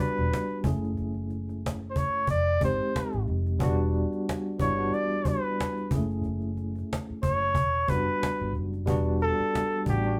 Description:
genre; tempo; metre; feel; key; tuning
R&B, neo-soul; 91 BPM; 4/4; swing 55% on 16ths; E dorian; A4 = 442 Hz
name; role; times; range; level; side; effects
warm flugelhorn; melody; 0.0-10.2 s; G4 to D5; -30 LUFS; equal; none
tine electric piano; accompaniment; 0.0-10.2 s; F#3 to G#4; -33 LUFS; equal; medium tremolo
vintage muted fingered electric bass; bass; 0.2-10.2 s; E1 to A1; -32 LUFS; equal; none
cajon; drums; 0.2-10.1 s; none; -33 LUFS; equal; none
room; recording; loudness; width
wet studio reverb, RT60 0.6 s; band playing live in one room; -28 LUFS; mono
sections
0.0-8.9 A section; 8.9-10.2 B section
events
flugelhorn solo 8.9-10.2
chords
0.0 Em9; 0.6 F#m9; 2.3 Fm9; 3.6 Em9; 5.9 F#m9; 7.6 Em9

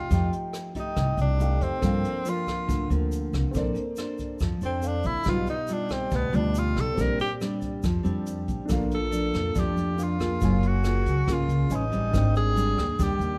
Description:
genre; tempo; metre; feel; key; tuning
bossa nova; 140 BPM; 4/4; straight; Bb major; A4 = 442 Hz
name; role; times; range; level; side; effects
breathy tenor saxophone; melody; 0.0-13.4 s; B3 to Bb4; -32 LUFS; equal; none
nylon-string guitar; accompaniment; 0.0-13.4 s; F2 to C5; -32 LUFS; equal; none
warm concert grand piano; accompaniment; 0.0-13.4 s; Bb3 to Ab5; -39 LUFS; equal; none
upright bass; bass; 0.1-13.4 s; Gb1 to G2; -29 LUFS; equal; none
jazz brush drum kit; drums; 0.1-13.3 s; hi-hat, kick drum, rim click; -35 LUFS; equal; none
tube shaker; percussion; 0.1-13.4 s; none; -52 LUFS; equal; none
room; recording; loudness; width
light reverb; dark, warm production; -26 LUFS; mono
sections
0.0-8.7 A section; 8.7-13.4 A section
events
tenor saxophone solo 0.0-13.4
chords
0.0 F9; 1.8 Gm11; 3.5 Bbmaj9; 5.3 G7b13/B; 7.0 Bb69; 8.7 Bbmaj7; 10.4 Gbmaj9; 11.7 Amaj9#11; 12.1 Abmaj9#11

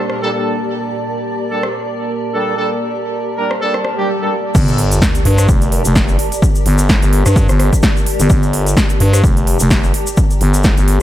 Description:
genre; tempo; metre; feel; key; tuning
bass house; 128 BPM; 4/4; swing 56% on 16ths; G minor; A4 = 440 Hz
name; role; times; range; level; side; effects
dark analog pad; sustained chords; 0.0-4.5 s; Bb3 to A5; -25 LUFS; right 1 dB; chorus, phaser, sidechain pumping
downlifter, swell and sub drop; sound effects; 3.8-6.4 s; none; -23 LUFS; equal; none
granular cloud pad; texture; 0.0-11.0 s; G4 to A5; -22 LUFS; left 1 dB; built-in reverb, sidechain pumping
big-room dance drum kit; drums; 0.1-11.0 s; crash cymbal, hi-hat, rim click, snare drum; -20 LUFS; equal; overdrive
clear horn section; stabs; 0.2-4.3 s; G3 to Bb4; -20 LUFS; right 2 dB; vintage 12-bit sampler grit, sidechain pumping, digital delay
growling FM bass; bass; 4.5-11.0 s; F1 to G2; -13 LUFS; equal; overdrive, sidechain pumping
electronic kick drum; drums; 4.5-10.7 s; none; -14 LUFS; equal; overdrive
tube shaker; percussion; 4.6-10.9 s; none; -25 LUFS; left 2 dB; none
room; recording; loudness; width
light reverb; none; -12 LUFS; side -13 dB against mid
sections
0.0-4.5 A section; 4.5-11.0 B section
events
swell 3.8-4.5; drop 4.5-11.0; impact 4.5-6.4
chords
0.0 Gmadd9

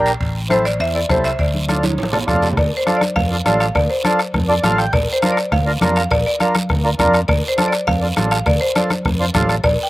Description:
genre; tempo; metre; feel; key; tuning
latin, cumbia; 204 BPM; 4/4; straight; D minor; A4 = 441 Hz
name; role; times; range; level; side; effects
mellow accordion; accompaniment; 0.0-9.6 s; C4 to G5; -18 LUFS; right 1 dB; none
fingered electric bass; bass; 0.0-9.8 s; A1 to F2; -21 LUFS; equal; none
guiro; percussion; 0.1-9.9 s; none; -28 LUFS; right 3 dB; none
timbales and cowbell; percussion; 0.1-9.8 s; none; -28 LUFS; right 3 dB; none
bombo; percussion; 0.2-9.8 s; none; -22 LUFS; left 1 dB; none
buzzing marimba with hard mallets; melody; 0.5-9.9 s; C5 to G5; -20 LUFS; equal; slapback echo
congas; percussion; 0.5-9.5 s; none; -23 LUFS; left 1 dB; none
room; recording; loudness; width
little or no reverb; recorded outdoors, with no room sound; -14 LUFS; side -18 dB against mid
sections
0.0-2.6 A section; 2.6-9.9 B section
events
drum fill 1.7-2.6; accordion fill 4.3-4.9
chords
0.2 Am; 1.4 Dm; 4.9 Bb; 7.3 Dm

